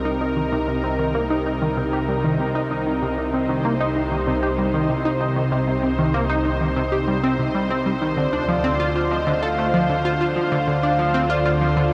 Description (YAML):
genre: ambient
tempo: 96 BPM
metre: 4/4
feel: straight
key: C minor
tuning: A4 = 440 Hz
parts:
  - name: lush unison pad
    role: sustained chords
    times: 0.0-11.9 s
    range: C2 to C5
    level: -24 LUFS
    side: equal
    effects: chorus
  - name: tight sequenced synth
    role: riff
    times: 0.1-11.8 s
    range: C3 to A4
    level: -25 LUFS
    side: equal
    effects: chorus, tape echo
  - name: breathy flute-like synth lead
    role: melody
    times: 8.2-11.9 s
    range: D5 to F5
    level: -26 LUFS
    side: equal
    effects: chorus, tremolo, tape echo
room: wet huge ambient reverb, RT60 7.5 s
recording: in a vast, echoing space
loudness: -21 LUFS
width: mono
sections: 0.0-11.9 A section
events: none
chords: 0.0 Cm7; 8.2 Dm7